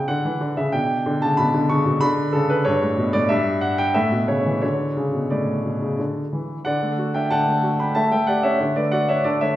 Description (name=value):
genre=classical-period piano sonatina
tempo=92 BPM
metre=3/4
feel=rubato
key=D major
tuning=A4 = 440 Hz
part: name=clear baby grand piano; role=solo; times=0.0-9.6 s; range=G2 to C#6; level=-18 LUFS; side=equal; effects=none
room=wet recital hall reverb, RT60 1.2 s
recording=heard from further back in the room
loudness=-18 LUFS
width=side -14 dB against mid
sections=0.0-6.7 A section; 6.7-9.6 B section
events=none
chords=0.0 Bm (rootless); 0.7 Bm9; 2.7 G; 3.3 N.C.; 4.0 A; 4.6 D; 8.0 A7; 8.6 D